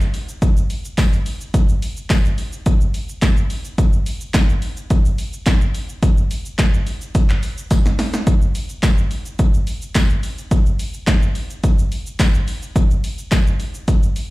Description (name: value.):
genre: pop.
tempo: 107 BPM.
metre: 4/4.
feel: straight.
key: none.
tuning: none.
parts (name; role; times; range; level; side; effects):
punchy analog drum machine; drums; 0.0-14.3 s; handclaps, hi-hat, kick drum, shaker, snare drum; -16 LUFS; equal; none.
tambourine; percussion; 1.0-13.5 s; none; -35 LUFS; left 6 dB; none.
room: little or no reverb.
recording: played on a big sound system in a bare room, large studio reverb.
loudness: -16 LUFS.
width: side -19 dB against mid.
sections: 0.0-14.3 A section.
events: drum fill 7.7-8.3.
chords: none.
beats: 0.42 0.98 | 1.54 2.10 2.66 3.22 | 3.78 4.34 4.90 5.46 | 6.03 6.59 7.15 7.71 | 8.27 8.83 9.39 9.95 | 10.51 11.07 11.63 12.19 | 12.76 13.32 13.88.